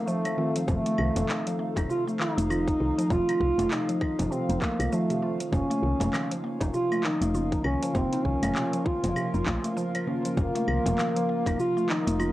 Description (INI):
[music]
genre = organic downtempo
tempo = 99 BPM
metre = 4/4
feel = swing 59% on 16ths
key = unclear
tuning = A4 = 440 Hz
[part]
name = dark duduk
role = melody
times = 0.0-12.3 s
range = A3 to F4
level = -28 LUFS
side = equal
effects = cassette tape, analog delay, shimmer reverb
[part]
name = muted felt-like synth keys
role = accompaniment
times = 0.0-12.3 s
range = Db3 to A4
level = -34 LUFS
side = right 1 dB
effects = chorus, sidechain pumping, cassette tape, tape echo
[part]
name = warbly tape-like pad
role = sustained chords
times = 0.0-12.3 s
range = F3 to F5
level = -35 LUFS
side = equal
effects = chorus, built-in reverb, sidechain pumping, cassette tape, shimmer reverb
[part]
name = mallet-like synth pluck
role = arpeggios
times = 0.0-12.3 s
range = C3 to F4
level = -33 LUFS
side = equal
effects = chorus, cassette tape, tape echo
[part]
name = afro-pop drum kit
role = drums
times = 0.1-12.3 s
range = cabasa, claves, handclaps, hi-hat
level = -34 LUFS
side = equal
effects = cassette tape
[part]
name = woody FM bass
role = bass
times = 0.7-12.3 s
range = F1 to C2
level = -29 LUFS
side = equal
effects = sidechain pumping
[part]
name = electronic kick drum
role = drums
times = 0.7-11.6 s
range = none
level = -31 LUFS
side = equal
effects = cassette tape
[part]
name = frame drum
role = percussion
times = 0.7-11.6 s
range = none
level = -36 LUFS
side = right 1 dB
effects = none
[sound]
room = moderate studio reverb, RT60 0.5 s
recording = home recording on cassette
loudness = -24 LUFS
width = side -15 dB against mid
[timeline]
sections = 0.0-12.3 A section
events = none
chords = 0.0 F7; 5.5 Bbm/F